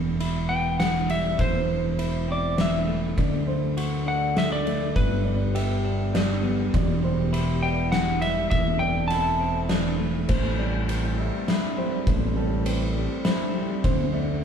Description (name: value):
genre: post-rock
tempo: 101 BPM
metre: 3/4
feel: straight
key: A dorian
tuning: A4 = 440 Hz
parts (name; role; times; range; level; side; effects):
- clean electric guitar; arpeggios; 0.0-14.4 s; E2 to G4; -28 LUFS; left 1 dB; none
- growling fingered electric bass; bass; 0.0-14.4 s; E1 to D2; -28 LUFS; right 1 dB; overdrive
- oversized low-tuned drum kit; drums; 0.2-14.0 s; crash cymbal, kick drum, ride cymbal, snare drum; -27 LUFS; equal; none
- electric slide guitar; melody; 0.5-9.9 s; B4 to A5; -27 LUFS; left 1 dB; none
- dark analog pad; sustained chords; 3.2-14.4 s; B2 to A4; -34 LUFS; right 2 dB; chorus
- felt-muted upright piano; arpeggios; 3.2-14.4 s; A4 to E5; -35 LUFS; right 4 dB; slapback echo
room: wet large studio reverb, RT60 1.2 s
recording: band playing live in one room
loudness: -22 LUFS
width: side -7 dB against mid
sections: 0.0-10.3 A section; 10.3-14.4 B section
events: none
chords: 0.0 Em; 1.4 Am/E; 3.2 D; 5.0 G; 6.7 Em; 8.5 Am/E; 10.3 Am7; 13.8 D7